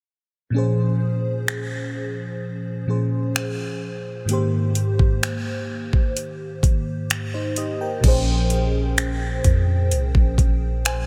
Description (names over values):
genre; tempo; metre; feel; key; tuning
contemporary R&B; 64 BPM; 4/4; straight; Bb dorian; A4 = 440 Hz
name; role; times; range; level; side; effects
FM electric piano with soft pad layer; accompaniment; 0.5-11.1 s; Ab2 to Ab5; -26 LUFS; equal; chorus, phaser
smooth R&B drum kit; drums; 1.5-11.1 s; crash cymbal, finger snaps, hi-hat, kick drum; -24 LUFS; equal; none
soft 808-style bass; bass; 8.0-11.1 s; Bb1 to F2; -24 LUFS; equal; none
room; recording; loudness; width
light reverb; none; -22 LUFS; mono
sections
0.5-8.0 A section; 8.0-11.1 B section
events
none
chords
0.5 Bbm9; 4.3 Abmaj7; 8.0 Bbm9